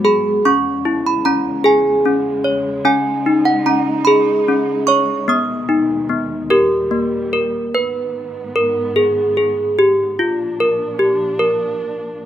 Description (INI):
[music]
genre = children's music, lullaby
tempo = 49 BPM (dotted quarters)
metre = 6/8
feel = rubato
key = unclear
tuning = A4 = 440 Hz
[part]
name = desk bells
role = melody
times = 0.0-12.3 s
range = G#3 to D#6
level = -14 LUFS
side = equal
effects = none
[part]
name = warm chamber string section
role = sustained chords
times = 0.0-12.3 s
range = D#2 to D#4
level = -28 LUFS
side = right 2 dB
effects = none
[sound]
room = small room ambience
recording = rough home demo mix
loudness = -14 LUFS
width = side -10 dB against mid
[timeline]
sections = 0.0-7.8 A section; 7.8-12.3 B section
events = none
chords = 0.5 E6; 2.9 C#sus2; 5.3 G#m/D#; 6.5 D#; 7.8 G#m; 10.2 A#